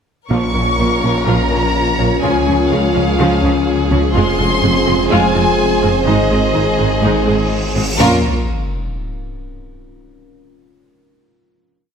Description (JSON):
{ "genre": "cinematic, hybrid orchestral and electronic film score", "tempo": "125 BPM", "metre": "4/4", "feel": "straight", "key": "Bb minor", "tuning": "A4 = 445 Hz", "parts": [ { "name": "warm symphonic violin section", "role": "melody", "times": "0.3-8.3 s", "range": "Bb4 to Db6", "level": "-20 LUFS", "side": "left 2 dB", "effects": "none" }, { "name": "rich studio violin section", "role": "second line", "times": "0.3-8.3 s", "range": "F4 to Db5", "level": "-21 LUFS", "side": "equal", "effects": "none" }, { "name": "dark symphonic viola section", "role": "accompaniment", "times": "0.3-8.3 s", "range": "F3 to F4", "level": "-22 LUFS", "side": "right 2 dB", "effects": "none" }, { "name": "deep dark ambient pad", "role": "sustained chords", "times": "1.3-8.3 s", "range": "F3 to Bb4", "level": "-23 LUFS", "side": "left 1 dB", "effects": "chorus, built-in reverb" }, { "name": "mellow French horn section", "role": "sustained chords", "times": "0.3-8.2 s", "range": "C4 to Ab4", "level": "-23 LUFS", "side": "left 3 dB", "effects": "none" }, { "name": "mellow trombone section", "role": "sustained chords", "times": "0.3-8.2 s", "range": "Eb3 to Bb3", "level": "-23 LUFS", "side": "right 3 dB", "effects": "none" }, { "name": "glassy wavetable pluck", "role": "arpeggios", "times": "0.3-7.9 s", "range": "Db3 to Bb4", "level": "-25 LUFS", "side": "right 1 dB", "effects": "none" }, { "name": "rich symphonic cello section", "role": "bass", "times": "0.3-8.3 s", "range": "F2 to Db3", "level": "-22 LUFS", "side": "right 2 dB", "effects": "none" }, { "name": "rich symphonic double bass section", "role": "bass", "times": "0.3-8.3 s", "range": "F1 to Db2", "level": "-22 LUFS", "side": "right 2 dB", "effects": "none" }, { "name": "snarling distorted saw bass", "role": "bass", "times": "0.3-8.3 s", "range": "F1 to Db2", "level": "-21 LUFS", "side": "left 1 dB", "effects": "distortion" }, { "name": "cymbal swell and sub drop", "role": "sound effects", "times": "7.3-9.9 s", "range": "none", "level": "-23 LUFS", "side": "left 1 dB", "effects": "none" } ], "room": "moderate scoring stage reverb, RT60 1.6 s", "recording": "none", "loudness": "-12 LUFS", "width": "side -7 dB against mid", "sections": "0.3-8.0 theme; 8.0-9.9 final chord", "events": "cymbal swell 7.3-8.0; impact 8.0-9.9", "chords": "0.3 Bbm; 2.2 Db; 4.2 Fm; 6.1 Ab; 8.0 Bbm", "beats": "| 0.31 0.79 1.27 1.75 | 2.23 2.71 3.19 3.67 | 4.15 4.63 5.11 5.59 | 6.07 6.55 7.03 7.51 | 7.99 8.47 8.95 9.43" }